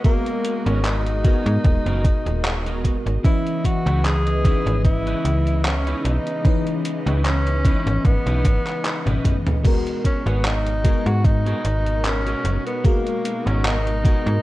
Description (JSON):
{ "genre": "vaporwave", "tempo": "75 BPM", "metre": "4/4", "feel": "swing 54% on 16ths", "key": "G# minor", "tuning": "A4 = 440 Hz", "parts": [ { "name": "breathy tenor saxophone", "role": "melody", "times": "0.0-14.4 s", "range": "A#3 to G#4", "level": "-27 LUFS", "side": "equal", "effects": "tape echo" }, { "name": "FM electric piano with soft pad layer", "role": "accompaniment", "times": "0.0-14.4 s", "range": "E3 to D#5", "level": "-27 LUFS", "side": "left 2 dB", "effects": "lush chorus" }, { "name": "rich studio string section", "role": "sustained chords", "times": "0.0-14.4 s", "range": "B2 to D#5", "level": "-32 LUFS", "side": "equal", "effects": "none" }, { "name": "clean electric guitar", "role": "riff", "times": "0.0-14.4 s", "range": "B3 to C#5", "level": "-34 LUFS", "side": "right 1 dB", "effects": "analog chorus, analog delay" }, { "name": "detuned 8-bit digital drum machine", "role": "drums", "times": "0.0-14.4 s", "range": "crash cymbal, handclaps, hi-hat, toms", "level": "-27 LUFS", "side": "equal", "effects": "overdrive, gated reverb" }, { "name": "electronic kick drum", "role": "drums", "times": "0.0-14.2 s", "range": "none", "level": "-18 LUFS", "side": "equal", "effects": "overdrive" }, { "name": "slap-like FM bass", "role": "bass", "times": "0.7-14.4 s", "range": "D#1 to G#2", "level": "-21 LUFS", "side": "equal", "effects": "none" } ], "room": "light reverb, digital ambience", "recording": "cassette tape", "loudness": "-18 LUFS", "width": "side -17 dB against mid", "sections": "0.0-14.4 A section", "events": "drum fill 9.0-9.6", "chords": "0.0 G#m9; 3.2 C#m9; 9.6 G#m9" }